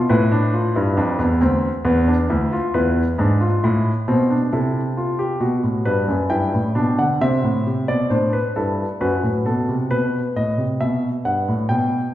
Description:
classical, baroque-style 4-part fugue for grand piano; 67 BPM; 4/4; straight; A minor; A4 = 441 Hz
warm concert grand piano; solo; 0.0-12.1 s; D2 to G5; -17 LUFS; equal
wet recital hall reverb, RT60 1.5 s; heard from further back in the room; -17 LUFS; side -13 dB against mid
0.0-12.1 A section
0.1 Bm7b5; 1.8 E7; 3.6 Am; 5.4 Em; 7.2 Am11; 9.0 B7/F#; 10.8 Em

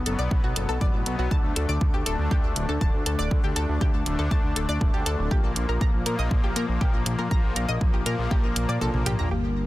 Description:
melodic techno; 120 BPM; 4/4; straight; A4 = 442 Hz
brassy analog pad; stabs; 0.0-9.7 s; G2 to D4; -29 LUFS; left 2 dB; chorus, sidechain pumping, digital delay
fat analog bass; bass; 0.0-9.7 s; D1 to Bb2; -28 LUFS; equal; sidechain pumping
analog pluck; arpeggios; 0.1-9.4 s; F#4 to Bb5; -32 LUFS; left 2 dB; analog chorus, sidechain pumping, digital delay
techno drum kit; drums; 0.1-9.3 s; hi-hat, toms; -29 LUFS; right 1 dB; overdrive
electronic kick drum; drums; 0.3-8.4 s; -23 LUFS; equal
fat analog lead; melody; 9.3-9.7 s; Bb3; -29 LUFS; left 1 dB; phaser, sidechain pumping
little or no reverb; dense, heavily limited modern master; -22 LUFS; side -16 dB against mid
0.0-9.3 A section
kick drops out 8.8-9.3; drum fill 8.8-9.3
0.0 Bm; 1.3 D5; 5.3 Bb5

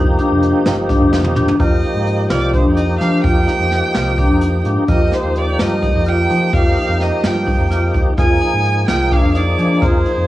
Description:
progressive instrumental, band music in an uneven meter; 255 BPM (eighths); 7/8; straight; F dorian; A4 = 435 Hz
tonewheel organ; accompaniment; 0.0-10.3 s; F3 to Ab4; -20 LUFS; equal; overdrive, chorus vibrato, slow rotary speaker, cassette tape
vibraphone with medium mallets; arpeggios; 0.0-10.3 s; D4 to F4; -20 LUFS; left 2 dB; cassette tape
picked electric bass; bass; 0.0-10.3 s; F1 to F3; -18 LUFS; equal
jazz brush drum kit; drums; 0.2-10.2 s; hi-hat, kick drum, snare drum, toms; -18 LUFS; equal; cassette tape
rich violin; melody; 1.6-10.3 s; C5 to Ab5; -20 LUFS; right 2 dB; cassette tape, tape echo
moderate studio reverb, RT60 0.5 s; home recording on cassette, small room ambience; -13 LUFS; side -15 dB against mid
0.0-1.6 A section; 1.6-10.3 B section
drum fill 1.1-1.6
0.0 F13sus4; 1.6 Fm9; 4.9 Ebadd9; 8.2 Fm7

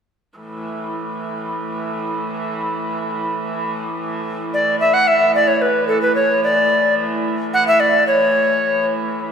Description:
medieval dance; 109 BPM; 2/4; straight; A major; A4 = 440 Hz
clear hurdy-gurdy; drone; 0.4-9.3 s; A2 to E3; -23 LUFS; right 1 dB
bright reedy tenor recorder; melody; 4.5-8.9 s; A4 to F#5; -14 LUFS; equal
wet concert hall reverb, RT60 2.0 s; recorded in a church or concert hall; -16 LUFS; side -7 dB against mid
0.4-4.8 A section; 4.8-9.3 B section

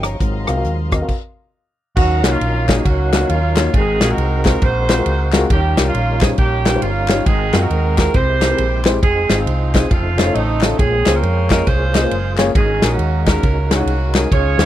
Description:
uptempo gospel; 136 BPM; 4/4; swing 62% on 8ths; A4 = 439 Hz
dark upright piano; accompaniment; 0.0-14.7 s; Ab2 to Bb5; -22 LUFS; left 3 dB
clear studio string section; sustained chords; 0.0-1.1 s; Eb5 to Db6; -35 LUFS; left 4 dB
percussive tonewheel organ; sustained chords; 0.0-14.7 s; Db3 to F5; -27 LUFS; right 2 dB; slow rotary speaker, overdrive, chorus vibrato
hollow-body short-scale fingered electric bass; bass; 0.0-14.7 s; F1 to Gb2; -19 LUFS; equal
natural country drum kit; drums; 0.0-14.7 s; crash cymbal, hi-hat, kick drum, ride cymbal, rim click, snare drum; -18 LUFS; equal
mellow saxophone section; melody; 2.0-14.7 s; Ab3 to Db5; -20 LUFS; right 3 dB
group handclap; percussion; 2.3-14.7 s; -26 LUFS; left 13 dB
little or no reverb; dry, close 1970s-style studio recording; -13 LUFS; side -12 dB against mid
0.0-2.0 A section; 2.0-14.7 B section
stop 1.1-2.0
0.2 Ab13; 1.1 N.C.; 2.0 Ebm9; 3.7 Ab13; 5.5 Eb9; 7.3 Ab13; 8.1 C7b13; 9.0 Fm7; 9.9 F7b13; 10.8 Bbm9; 12.6 Ab9sus4

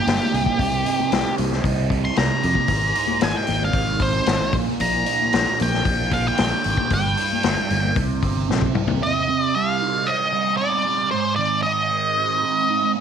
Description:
psychedelic rock; 114 BPM; 4/4; straight; C minor; A4 = 444 Hz
octave-fuzz lead guitar; melody; 0.0-12.9 s; G4 to C6; -21 LUFS; left 1 dB; distortion, slapback echo
thick fuzz guitar; riff; 0.0-13.0 s; G2 to Eb4; -25 LUFS; right 12 dB; distortion, phaser
swarming drone; drone; 0.0-9.1 s; C2 to G2; -35 LUFS; left 3 dB; built-in reverb
fingered electric bass; bass; 0.1-9.0 s; G1 to F2; -24 LUFS; equal
vintage drum kit; drums; 0.1-9.0 s; hi-hat, kick drum, snare drum, toms; -24 LUFS; left 5 dB
congas; percussion; 0.1-9.0 s; -31 LUFS; left 11 dB
moderate echo chamber reverb, RT60 1.4 s; 1960s-style stereo with parts hard left and right; -18 LUFS; side -8 dB against mid
0.0-9.0 A section; 9.0-13.0 B section
drum fill 0.0-0.6, 8.5-9.0; lead electric guitar solo 0.0-9.0
0.0 Gm; 0.6 Cm; 2.7 Ab; 4.5 Bb; 6.9 Gm; 8.0 C5; 9.0 Cm; 11.1 Ab

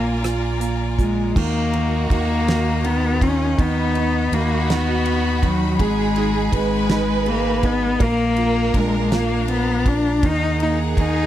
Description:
six-eight pop ballad; 54 BPM (dotted quarters); 6/8; straight; Eb minor; A4 = 440 Hz
rich cello; melody; 0.0-11.3 s; F#3 to Eb4; -21 LUFS; left 3 dB; plate reverb
clear upright piano; accompaniment; 0.0-11.3 s; Eb3 to Bb4; -27 LUFS; right 8 dB
clear studio string section; sustained chords; 0.0-11.3 s; D4 to B5; -29 LUFS; left 3 dB
fingered electric bass; bass; 0.0-11.3 s; Ab1 to Eb2; -23 LUFS; equal
damped 70s drum kit; drums; 0.2-11.1 s; crash cymbal, hi-hat, kick drum, ride cymbal, rim click, snare drum; -22 LUFS; equal
warm symphonic violin section; second line; 1.4-11.3 s; D#4 to Cb5; -27 LUFS; right 7 dB; plate reverb
light reverb; -17 LUFS; side -12 dB against mid
0.0-1.4 A section; 1.4-11.3 B section
0.0 Bb7; 1.4 Ebm; 3.6 B/D#; 5.8 Abm; 8.0 Bb; 10.2 Ebm

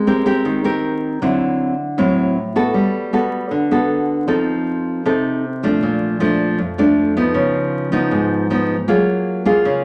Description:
bossa nova; 157 BPM; 4/4; straight; A4 = 440 Hz
nylon-string guitar; solo; 0.0-9.8 s; F2 to Bb4; -18 LUFS; equal
moderate large studio reverb, RT60 1.2 s; vinyl crackle; -18 LUFS; mono
0.0-5.8 A section; 5.8-9.8 B section
0.0 Abmaj9; 1.2 D9; 2.8 Gmaj9; 4.3 F7; 5.8 Bbmaj7; 7.4 Db9; 8.9 Gbmaj9

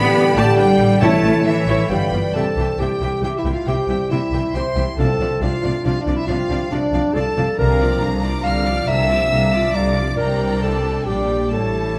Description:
cinematic; 138 BPM; 3/4; straight; C mixolydian; A4 = 440 Hz
rich chamber violin section; melody; 0.0-12.0 s; D5 to F6; -30 LUFS; equal
bright oboe; second line; 0.0-2.1 s; C#5 to D5; -28 LUFS; equal
mellow clarinet; second line; 0.0-12.0 s; D4 to F5; -24 LUFS; equal
mellow hollow concert flute; second line; 0.0-2.1 s; E5 to G5; -28 LUFS; equal
warm symphonic violin section; second line; 0.0-12.0 s; C#5 to D6; -32 LUFS; equal
clear symphonic viola section; accompaniment; 0.0-12.0 s; D3 to D5; -30 LUFS; equal
mellow French horn section; sustained chords; 0.0-2.1 s; E4 to D5; -24 LUFS; equal
mellow trombone section; sustained chords; 0.0-2.1 s; D3 to B3; -27 LUFS; equal
concert harp; arpeggios; 0.0-12.0 s; G2 to E5; -29 LUFS; equal
rich symphonic cello section; bass; 0.0-12.0 s; A2 to B3; -26 LUFS; equal
timpani; percussion; 0.0-1.6, 5.0-8.2 s; A2 to C3; -27 LUFS; equal
rich symphonic double bass section; bass; 0.4-12.0 s; G1 to C2; -25 LUFS; equal
wet recital hall reverb, RT60 1.4 s; -18 LUFS; mono
0.0-2.4 A section; 2.4-12.0 B section
0.0 G/A; 1.0 A; 1.9 G7; 2.4 C; 5.0 Dm/C; 7.6 Bb/C; 10.2 Gm/C

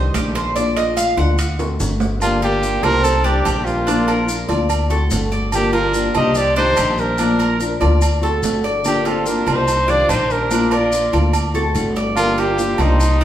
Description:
latin, Cuban son and guajira; 145 BPM; 4/4; straight; G minor; A4 = 440 Hz
flamenco guitar; accompaniment; 0.0-13.2 s; D3 to G4; -22 LUFS; left 2 dB
Cuban tres; arpeggios; 0.0-13.2 s; D4 to F#5; -23 LUFS; right 1 dB
upright bass; bass; 0.0-13.2 s; G1 to D2; -20 LUFS; equal
maracas; percussion; 0.1-13.2 s; -30 LUFS; left 3 dB
timbales and agogo bells; percussion; 0.1-13.2 s; -26 LUFS; right 5 dB
breathy trumpet; melody; 2.2-13.2 s; Eb4 to Eb5; -19 LUFS; right 1 dB
warm chamber violin section; second line; 2.2-13.2 s; G3 to G4; -27 LUFS; equal
wet large studio reverb, RT60 1.4 s; band playing live in one room; -15 LUFS; side -11 dB against mid
0.0-2.2 A section; 2.2-13.2 B section
Cuban tres solo 0.0-2.2; drum fill 1.6-2.2
0.0 Cmadd9; 0.6 Bb; 1.4 D7; 2.2 Gm7; 3.0 Cmadd9; 3.9 Bb; 4.7 D7; 5.5 Gm7; 6.4 Cmadd9; 7.2 Bb; 8.0 D7; 8.9 Gm7; 9.7 Cmadd9; 10.5 Bb; 11.3 D7; 12.2 Gm7

